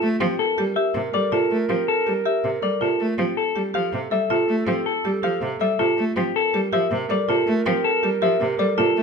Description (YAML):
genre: classical, minimalist pattern music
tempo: 161 BPM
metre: 4/4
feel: straight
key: unclear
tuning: A4 = 440 Hz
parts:
  - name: semi-hollow electric guitar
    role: melody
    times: 0.0-9.0 s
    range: G4 to F5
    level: -23 LUFS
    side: left 8 dB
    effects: none
  - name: mellow clarinet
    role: second line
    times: 0.0-9.0 s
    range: A4 to Bb4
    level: -28 LUFS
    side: right 7 dB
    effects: none
  - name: rich cello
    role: accompaniment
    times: 0.0-9.0 s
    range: C3 to A3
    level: -25 LUFS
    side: right 1 dB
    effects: none
  - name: buzzing marimba with medium hard mallets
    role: arpeggios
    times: 0.0-9.0 s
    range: C4 to A4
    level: -25 LUFS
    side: right 6 dB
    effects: none
room: moderate large studio reverb, RT60 0.9 s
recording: minimal, uncompressed stereo recording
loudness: -19 LUFS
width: side -5 dB against mid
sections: 0.0-9.0 A section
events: none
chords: 0.4 Gm11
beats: 0.02 | 0.39 0.77 1.14 1.51 | 1.88 2.26 2.63 3.00 | 3.37 3.75 4.12 4.49 | 4.87 5.24 5.61 5.98 | 6.36 6.73 7.10 7.47 | 7.85 8.22 8.59 8.96